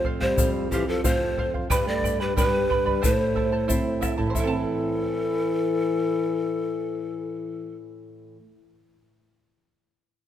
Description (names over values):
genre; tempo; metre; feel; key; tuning
andean folk, Andean ensemble; 91 BPM; 2/4; straight; A minor; A4 = 442 Hz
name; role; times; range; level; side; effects
breathy large pan pipes; melody; 0.0-7.8 s; G4 to D5; -27 LUFS; right 1 dB; none
mellow French horn; second line; 0.0-7.8 s; E3 to A3; -29 LUFS; left 4 dB; tape echo
charango; accompaniment; 0.0-8.6 s; E4 to B5; -31 LUFS; right 5 dB; none
flamenco guitar; accompaniment; 0.0-8.5 s; F2 to F4; -31 LUFS; right 4 dB; none
bombo; percussion; 0.0-4.7 s; none; -27 LUFS; left 1 dB; none
egg shaker; percussion; 0.4-4.7 s; none; -34 LUFS; left 10 dB; none
room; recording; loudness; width
moderate concert hall reverb, RT60 2.0 s; none; -22 LUFS; side -10 dB against mid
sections
0.0-4.4 A section; 4.4-7.0 B section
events
none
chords
0.0 F; 1.7 G; 3.0 Am